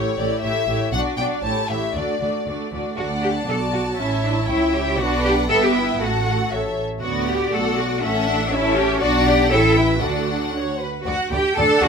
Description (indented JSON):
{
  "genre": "quick classical-period movement for string orchestra",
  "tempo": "118 BPM",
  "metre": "2/4",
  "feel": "straight",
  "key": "D major",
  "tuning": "A4 = 440 Hz",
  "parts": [
    { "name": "clear studio violin section", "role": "melody", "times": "0.0-11.9 s", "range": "C#5 to A5", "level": "-27 LUFS", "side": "left 6 dB", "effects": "none" },
    { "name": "warm studio violin section", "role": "second line", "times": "0.0-11.9 s", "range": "F#4 to A5", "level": "-24 LUFS", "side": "left 2 dB", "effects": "none" },
    { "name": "rich studio viola section", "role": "accompaniment", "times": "0.0-11.9 s", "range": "A3 to F#4", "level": "-25 LUFS", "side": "right 1 dB", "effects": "none" },
    { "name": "bright studio double bass section", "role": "bass", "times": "0.2-11.9 s", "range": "G1 to D2", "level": "-25 LUFS", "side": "right 3 dB", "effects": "none" },
    { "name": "clear studio cello section", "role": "bass", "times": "0.2-11.9 s", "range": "A2 to A4", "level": "-22 LUFS", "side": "right 1 dB", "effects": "none" }
  ],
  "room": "light reverb",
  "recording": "none",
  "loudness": "-18 LUFS",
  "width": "side -6 dB against mid",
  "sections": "0.0-3.0 A section; 3.0-11.1 B section",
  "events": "none",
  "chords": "0.0 A7; 0.9 Bm; 1.4 A7; 1.9 D; 4.0 A7; 5.0 Bm; 5.5 Em/G; 6.0 F#m/A; 6.5 A; 7.0 D; 8.0 A7; 9.0 Bm; 9.5 A7(no3); 10.0 D"
}